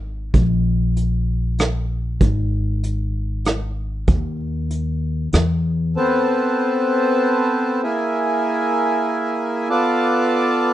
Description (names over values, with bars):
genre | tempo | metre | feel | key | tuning
acoustic folk-pop ballad | 96 BPM | 3/4 | straight | A harmonic minor from 6.0 s | A4 = 440 Hz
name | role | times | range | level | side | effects
upright bass | bass | 0.0-5.9 s | G#1 to E2 | -20 LUFS | left 1 dB | none
vintage brush drum kit | drums | 0.3-5.5 s | hi-hat, kick drum, rim click | -18 LUFS | right 1 dB | none
hand-pumped harmonium | sustained chords | 6.0-10.7 s | Bb3 to D5 | -16 LUFS | equal | none
room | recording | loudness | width
light reverb | nothing above 10.8 kHz | -17 LUFS | side -12 dB against mid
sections
0.0-6.0 A section; 6.0-10.7 B section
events
none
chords
0.0 N.C.; 6.0 Amadd9; 7.8 E; 9.7 Bm7b5